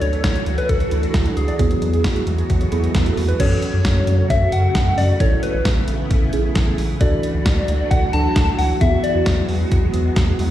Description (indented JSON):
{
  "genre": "synth-pop",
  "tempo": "133 BPM",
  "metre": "4/4",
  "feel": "straight",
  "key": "unclear",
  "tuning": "A4 = 444 Hz",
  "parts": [
    { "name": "soft struck synth lead", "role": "melody", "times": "0.0-9.5 s", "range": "G#4 to A5", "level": "-24 LUFS", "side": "left 2 dB", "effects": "chorus, ping-pong delay" },
    { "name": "muted felt-like synth keys", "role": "accompaniment", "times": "0.0-10.5 s", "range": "B3 to A4", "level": "-26 LUFS", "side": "right 2 dB", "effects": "chorus" },
    { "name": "soft string machine", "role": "sustained chords", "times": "0.0-10.5 s", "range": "C#3 to F#4", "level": "-25 LUFS", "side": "right 1 dB", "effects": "phaser, ensemble chorus" },
    { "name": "rubbery square bass", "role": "bass", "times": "0.0-10.5 s", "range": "A1 to F#2", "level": "-20 LUFS", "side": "equal", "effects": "none" },
    { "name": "clean 12-bit digital drum machine", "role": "drums", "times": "0.0-10.5 s", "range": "crash cymbal, hi-hat, kick drum, snare drum", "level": "-20 LUFS", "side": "equal", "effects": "none" },
    { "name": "swell", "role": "sound effects", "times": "2.4-3.4 s", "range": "none", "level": "-32 LUFS", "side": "right 1 dB", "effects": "none" },
    { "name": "warbly dusty pluck", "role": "arpeggios", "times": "0.1-3.4 s", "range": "F#3 to D5", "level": "-29 LUFS", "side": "right 5 dB", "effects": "chorus, ping-pong delay" }
  ],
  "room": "light reverb, digital ambience",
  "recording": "played on a big sound system in a bare room, large studio reverb",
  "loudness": "-16 LUFS",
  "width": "side -12 dB against mid",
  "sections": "0.0-3.4 A section; 3.4-10.5 B section",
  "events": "swell 2.4-3.4",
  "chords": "0.0 Dadd9; 1.6 Eadd9; 3.4 F#m; 5.2 Aadd9; 7.0 Dadd9; 8.8 Eadd9"
}